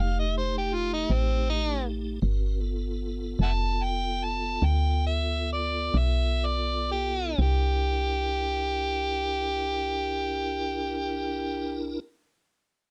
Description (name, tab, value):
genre	slow blues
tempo	40-54 BPM (dotted quarters)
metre	12/8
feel	straight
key	unclear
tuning	A4 = 442 Hz
part	overdriven harmonica	melody	0.0-12.0 s	C4 to A5	-31 LUFS	equal	none
part	tonewheel organ	sustained chords	0.0-12.0 s	A3 to Bb4	-38 LUFS	equal	slow rotary speaker, chorus vibrato
part	woody FM bass	bass	0.0-12.0 s	F1 to D2	-30 LUFS	equal	none
room	little or no reverb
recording	dark, warm production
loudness	-28 LUFS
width	mono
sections	0.0-7.4 A section; 7.4-12.9 B section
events	harmonica solo 0.0-7.4; slowing down 0.7-7.4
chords	0.0 F7; 2.2 G7; 7.4 C9